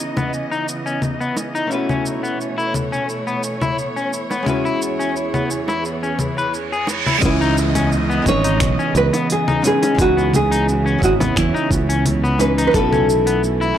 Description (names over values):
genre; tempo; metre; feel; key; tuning
sunset chillout; 87 BPM; 4/4; swing 54% on 16ths; C# minor; A4 = 440 Hz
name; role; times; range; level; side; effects
archtop guitar, miked and amplified; accompaniment; 0.0-13.8 s; E3 to D#5; -24 LUFS; moving between left 3 dB and right 5 dB; auto-pan, low-pass filter, analog delay
warm studio string section; sustained chords; 0.0-13.8 s; E2 to D#5; -26 LUFS; right 2 dB; none
clean electric guitar; arpeggios; 0.2-13.8 s; B3 to B4; -23 LUFS; left 4 dB; vintage 12-bit sampler grit, low-pass filter, analog delay
smooth R&B drum kit; drums; 0.2-13.7 s; congas, finger snaps, hi-hat, shaker; -24 LUFS; left 2 dB; none
bongos; percussion; 0.2-12.5 s; none; -26 LUFS; right 1 dB; none
reverse cymbal and downlifter; sound effects; 6.6-12.7 s; none; -26 LUFS; right 3 dB; none
sustaining fretless electric bass; bass; 7.2-13.7 s; G#1 to E2; -20 LUFS; equal; transformer saturation
electronic kick drum; drums; 7.2-12.9 s; none; -22 LUFS; equal; overdrive
nylon-string guitar; melody; 7.3-13.8 s; E4 to C#5; -19 LUFS; right 1 dB; analog delay
room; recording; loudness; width
little or no reverb; dry, gritty hardware recording; -16 LUFS; side -10 dB against mid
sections
0.0-7.2 A section; 7.2-13.8 B section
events
reverse cymbal 6.6-7.2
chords
0.0 C#m9; 1.7 B9sus4; 4.5 E6; 7.2 C#m9; 12.7 B9sus4